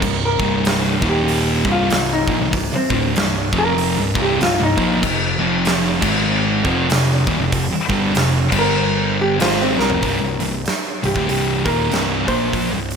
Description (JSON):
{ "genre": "stoner and doom metal", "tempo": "96 BPM", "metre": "4/4", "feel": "swing 59% on 8ths", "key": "C minor", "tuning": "A4 = 443 Hz", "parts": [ { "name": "hollow-body jazz guitar", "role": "melody", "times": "0.0-13.0 s", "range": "C4 to C5", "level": "-22 LUFS", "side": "left 1 dB", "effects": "tape echo" }, { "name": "thick fuzz guitar", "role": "riff", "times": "0.0-13.0 s", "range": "C2 to Bb3", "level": "-21 LUFS", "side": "left 8 dB", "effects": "distortion" }, { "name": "thick fuzz guitar", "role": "riff", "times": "0.0-13.0 s", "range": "C2 to Bb3", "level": "-21 LUFS", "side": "right 9 dB", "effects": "distortion" }, { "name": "picked electric bass", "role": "bass", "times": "0.0-13.0 s", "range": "C1 to C2", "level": "-26 LUFS", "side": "equal", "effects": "overdrive" }, { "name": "big rock drum kit", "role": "drums", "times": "0.0-13.0 s", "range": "crash cymbal, hi-hat, kick drum, snare drum, toms", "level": "-21 LUFS", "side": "equal", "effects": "none" } ], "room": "light reverb", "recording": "none", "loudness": "-15 LUFS", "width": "side -6 dB against mid", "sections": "0.0-10.0 A section; 10.0-13.0 B section", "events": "hollow-body jazz guitar solo 0.0-10.0; drum fill 9.7-10.0", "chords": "0.0 C5; 1.0 Eb5; 1.6 Cm; 5.0 F5; 6.0 Ab5; 6.6 F5; 8.5 G5; 9.4 F5; 10.0 Cm" }